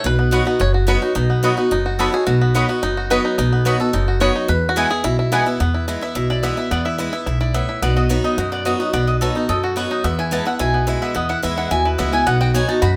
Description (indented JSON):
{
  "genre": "bluegrass",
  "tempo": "216 BPM",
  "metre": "4/4",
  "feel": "straight",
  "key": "E major",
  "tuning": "A4 = 440 Hz",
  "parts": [
    { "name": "bluegrass banjo", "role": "melody", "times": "0.0-13.0 s", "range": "B3 to C#5", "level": "-26 LUFS", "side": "equal", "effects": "none" },
    { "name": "picked swing-style acoustic guitar", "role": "accompaniment", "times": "0.0-13.0 s", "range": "E2 to F#4", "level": "-24 LUFS", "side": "equal", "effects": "none" },
    { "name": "upright bass", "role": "bass", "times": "0.0-13.0 s", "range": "F#1 to F#2", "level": "-23 LUFS", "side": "equal", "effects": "none" },
    { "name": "mandolin", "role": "stabs", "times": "0.3-12.9 s", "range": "B3 to B5", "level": "-25 LUFS", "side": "equal", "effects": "none" }
  ],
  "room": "moderate studio reverb, RT60 0.7 s",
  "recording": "none",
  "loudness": "-19 LUFS",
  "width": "mono",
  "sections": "0.0-5.6 A section; 5.6-13.0 A section",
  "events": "five-string banjo solo 0.0-5.6; mandolin solo 5.6-13.0",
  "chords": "0.0 B; 4.5 E; 7.8 B; 10.0 E; 12.3 B"
}